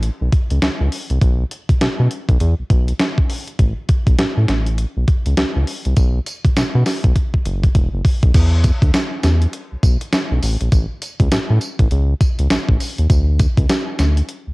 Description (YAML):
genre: R&B, new jack swing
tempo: 101 BPM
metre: 4/4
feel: swing 61% on 16ths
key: unclear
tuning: A4 = 440 Hz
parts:
  - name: round analog bass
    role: bass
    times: 0.0-14.5 s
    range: E1 to B2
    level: -16 LUFS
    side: equal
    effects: none
  - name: clean 12-bit digital drum machine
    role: drums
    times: 0.0-14.5 s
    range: crash cymbal, hi-hat, kick drum, snare drum, tambourine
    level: -16 LUFS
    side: equal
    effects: overdrive, cassette tape
room: little or no reverb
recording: home recording on cassette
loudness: -14 LUFS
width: side -23 dB against mid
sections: 0.0-8.3 A section; 8.3-14.5 B section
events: drum fill 7.2-8.3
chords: none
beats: 0.03 0.62 | 1.22 1.81 2.40 3.00 | 3.59 4.19 4.78 5.37 | 5.97 6.56 7.16 7.75 | 8.34 8.94 9.53 10.13 | 10.72 11.31 11.91 12.50 | 13.10 13.69 14.29